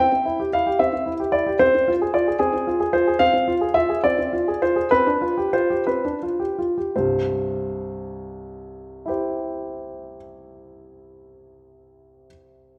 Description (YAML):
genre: classical-period piano sonatina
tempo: 54-76 BPM (dotted quarters)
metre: 6/8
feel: rubato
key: C major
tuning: A4 = 440 Hz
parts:
  - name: warm concert grand piano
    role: solo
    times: 0.0-12.8 s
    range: C2 to G5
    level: -22 LUFS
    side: equal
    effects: none
room: wet recital hall reverb, RT60 1.8 s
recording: none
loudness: -21 LUFS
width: mono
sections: 0.0-6.9 A section; 6.9-11.1 B section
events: slowing down 2.4-6.9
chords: 0.0 C; 1.6 Fm/C; 4.9 G7/C; 6.9 C